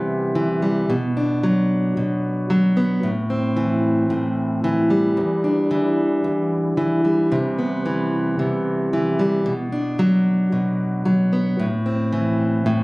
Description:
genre	pop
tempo	112 BPM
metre	4/4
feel	swing 55% on 16ths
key	unclear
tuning	A4 = 441 Hz
part	fingerpicked plugged-in steel-string acoustic guitar	solo	0.0-12.8 s	E2 to D4	-18 LUFS	equal	none
room	light reverb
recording	recorded on a phone in the room, studio reverb, compression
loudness	-18 LUFS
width	side -23 dB against mid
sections	0.0-7.3 A section; 7.3-12.8 A section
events	none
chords	0.0 Cmaj7; 0.9 Bm; 3.0 Am7; 5.2 Em7; 7.3 Cmaj7; 9.5 Bm; 11.6 Am

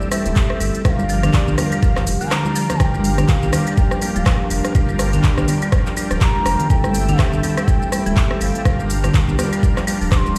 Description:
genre	afro house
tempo	123 BPM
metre	4/4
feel	swing 58% on 16ths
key	G dorian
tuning	A4 = 441 Hz
part	mellow bansuri	melody	0.0-10.4 s	D5 to D6	-29 LUFS	equal	digital delay
part	overdriven tonewheel organ	stabs	0.0-10.4 s	A3 to Bb4	-29 LUFS	equal	chorus vibrato, slow rotary speaker, vintage 12-bit sampler grit, sidechain pumping, digital delay
part	deep house drum kit	drums	0.0-10.4 s	handclaps, hi-hat, rim click, shaker	-27 LUFS	equal	small room ambience
part	marimba with hard mallets	arpeggios	0.1-10.4 s	D3 to G4	-26 LUFS	equal	sidechain pumping, digital delay
part	congas	percussion	0.1-10.3 s	none	-26 LUFS	equal	none
part	round analog bass	bass	0.3-10.4 s	D1 to Bb1	-24 LUFS	equal	sidechain pumping
part	electronic kick drum	drums	0.4-10.2 s	none	-19 LUFS	equal	small room ambience
part	warm analog pad	sustained chords	2.8-10.4 s	G3 to G5	-32 LUFS	equal	chorus, sidechain pumping
room	light reverb, digital ambience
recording	played on a big sound system in a bare room, stone room reverb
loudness	-18 LUFS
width	mono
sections	0.0-10.4 A section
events	none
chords	0.0 Am7/G; 0.9 Gm7; 2.8 Bb6/G; 6.7 Am7/G; 8.7 Gm7

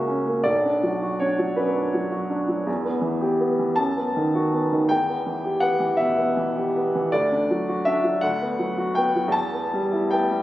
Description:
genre	classical, romantic character piece for solo piano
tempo	54 BPM (dotted quarters)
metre	6/8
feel	rubato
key	B minor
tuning	A4 = 439 Hz
part	clear upright piano	solo	0.0-10.4 s	B1 to A5	-20 LUFS	equal	none
room	moderate recital hall reverb, RT60 1.9 s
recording	recorded on a phone in the room, studio reverb, compression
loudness	-20 LUFS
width	side -14 dB against mid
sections	0.0-10.4 A section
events	none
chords	0.5 Bm; 2.7 Em; 3.8 B7/F#; 4.9 Em; 7.1 D; 8.2 Bm/D; 9.3 Em

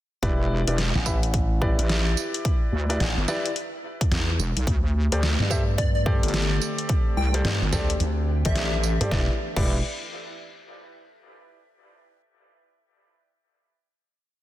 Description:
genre	glitch hop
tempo	108 BPM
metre	4/4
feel	swing 62% on 16ths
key	E minor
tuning	A4 = 443 Hz
part	dark grand piano	stabs	0.2-9.8 s	E4 to E5	-30 LUFS	equal	sidechain pumping, dub echo
part	wobble bass	bass	0.2-9.8 s	E1 to D2	-24 LUFS	equal	chorus, tube saturation
part	dubstep drum kit	drums	0.2-9.7 s	crash cymbal, hi-hat, rim click, snare drum, tambourine	-29 LUFS	equal	none
part	electronic kick drum	drums	0.2-9.6 s	none	-24 LUFS	equal	none
part	slap bass with an envelope filter	bass	0.9-9.1 s	A1 to G2	-25 LUFS	equal	none
part	warbly tape-like pad	sustained chords	4.7-9.4 s	D3 to G4	-35 LUFS	left 1 dB	chorus, built-in reverb, sidechain pumping
part	plucky unison lead	melody	5.8-9.0 s	D5 to G5	-34 LUFS	left 2 dB	wide subtle chorus, dub echo
room	little or no reverb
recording	dense, heavily limited modern master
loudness	-21 LUFS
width	side -14 dB against mid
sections	0.2-9.1 drop; 9.1-11.3 final chord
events	drop 0.2-9.1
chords	0.2 Em7; 4.7 D7sus4; 9.1 Em7

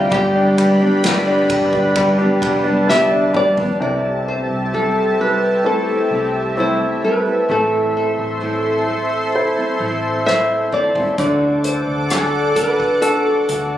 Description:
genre	pop ballad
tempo	65 BPM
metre	4/4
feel	straight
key	G mixolydian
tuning	A4 = 437 Hz
part	flamenco guitar	melody	0.0-13.8 s	G4 to G5	-19 LUFS	equal	none
part	clear concert grand piano	accompaniment	0.0-13.8 s	C3 to C5	-20 LUFS	left 1 dB	none
part	lush unison pad	sustained chords	0.0-13.8 s	C4 to D6	-22 LUFS	equal	chorus
part	fingerpicked steel-string acoustic guitar	arpeggios	0.0-13.8 s	G2 to A4	-22 LUFS	right 1 dB	tape echo
part	vintage muted fingered electric bass	bass	0.0-13.8 s	F1 to D2	-30 LUFS	equal	none
part	unplugged drum kit	drums	0.1-3.8, 10.3-13.7 s	hi-hat, kick drum, ride cymbal, rim click, snare drum, toms	-24 LUFS	equal	none
room	light reverb, small room ambience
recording	recorded on a phone in the room, club ambience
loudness	-14 LUFS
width	side -12 dB against mid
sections	0.0-3.8 A section; 3.8-13.8 B section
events	drum fill 2.9-3.8, 10.3-11.2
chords	0.1 G; 3.8 C6; 7.5 Am; 11.2 D

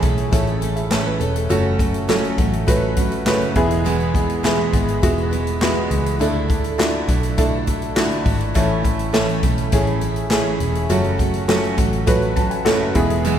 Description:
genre	piano-driven pop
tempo	102 BPM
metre	4/4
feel	straight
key	A major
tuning	A4 = 440 Hz
part	warm upright piano	accompaniment	0.0-13.4 s	A2 to A5	-21 LUFS	equal	none
part	picked steel-string acoustic guitar	riff	0.0-13.4 s	E2 to A4	-24 LUFS	right 4 dB	none
part	vintage muted picked electric bass	bass	0.0-13.4 s	E1 to D2	-23 LUFS	equal	none
part	natural country drum kit	drums	0.0-13.4 s	handclaps, hi-hat, kick drum, snare drum	-22 LUFS	left 1 dB	none
room	wet church reverb, RT60 3.4 s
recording	recorded in a church or concert hall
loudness	-16 LUFS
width	side -9 dB against mid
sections	0.0-13.4 A section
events	upright piano fill 12.1-13.2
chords	0.0 A; 1.5 F#m; 3.6 E; 6.2 Dsus2; 8.6 A; 10.9 F#m

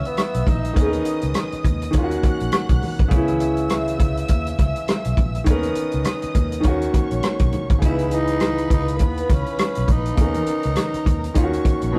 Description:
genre	lush 1970s-style soul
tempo	102 BPM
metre	4/4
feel	swing 58% on 16ths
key	C# dorian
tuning	A4 = 440 Hz
part	growling tenor saxophone	melody	0.0-1.4, 7.8-11.7 s	A#3 to E4	-29 LUFS	equal	none
part	warm studio violin section	second line	0.0-12.0 s	A#4 to F#6	-34 LUFS	equal	none
part	clear concert grand piano	accompaniment	0.0-12.0 s	A#2 to A#4	-26 LUFS	equal	none
part	warm soul drum kit	drums	0.1-11.9 s	hi-hat, kick drum, rim click	-22 LUFS	equal	none
part	vintage muted fingered electric bass	bass	0.3-11.9 s	G#1 to D#2	-28 LUFS	equal	none
part	congas	percussion	0.5-11.8 s	none	-36 LUFS	equal	none
room	moderate stone room reverb, RT60 1.3 s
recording	rough rehearsal-room recording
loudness	-20 LUFS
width	mono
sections	0.0-12.0 A section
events	none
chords	0.0 C#m9; 0.8 Bmaj7; 1.9 D#m7; 3.1 C#m7; 5.5 Bmaj7; 6.6 D#m7; 7.8 C#m9; 10.2 Bmaj7; 11.3 D#m7

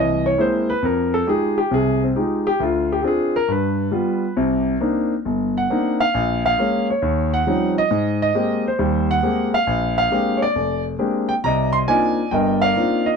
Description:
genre	solo jazz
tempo	136 BPM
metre	4/4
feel	swing 68% on 8ths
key	unclear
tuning	A4 = 439 Hz
part	warm concert grand piano	solo	0.0-13.2 s	F1 to C6	-17 LUFS	equal	none
room	moderate club reverb, RT60 0.5 s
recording	dark, warm production, nothing above 10.9 kHz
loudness	-17 LUFS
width	side -5 dB against mid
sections	0.0-11.4 A section; 11.4-13.2 B section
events	grand piano solo 0.0-11.4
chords	0.0 Caug7; 0.8 Fm9; 2.6 Bb13/D; 3.5 G7; 4.4 Cm9; 6.1 Bbm7; 7.0 Eb13; 7.9 Abmaj9; 9.7 Bb13; 11.4 Cm11

